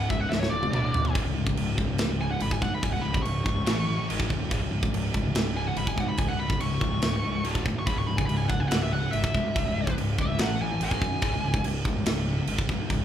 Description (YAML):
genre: heavy metal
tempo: 143 BPM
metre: 4/4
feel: straight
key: C# phrygian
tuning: A4 = 439 Hz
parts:
  - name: high-gain lead guitar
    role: melody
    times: 0.0-11.6 s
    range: C#5 to C#6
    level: -31 LUFS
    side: right 1 dB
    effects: distortion
  - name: sludgy distorted guitar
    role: riff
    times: 0.0-13.0 s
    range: C#2 to A3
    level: -30 LUFS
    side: left 1 dB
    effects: overdrive
  - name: fuzz picked electric bass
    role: bass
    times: 0.0-13.0 s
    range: C#1 to F#2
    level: -31 LUFS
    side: equal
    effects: overdrive
  - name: tight metal drum kit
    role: drums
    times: 0.1-13.0 s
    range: crash cymbal, kick drum, snare drum, toms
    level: -28 LUFS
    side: right 1 dB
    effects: none
room: moderate large studio reverb, RT60 0.8 s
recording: band playing live in one room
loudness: -24 LUFS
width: side -10 dB against mid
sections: 0.0-13.0 A section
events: lead electric guitar solo 0.0-13.0; drum fill 0.3-1.2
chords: 0.0 C#m; 0.7 D5; 1.2 C#5; 3.7 A5; 4.1 G#5; 4.5 C#5; 7.4 D5; 7.9 C#m; 10.4 A5; 10.8 G#5; 11.2 C#5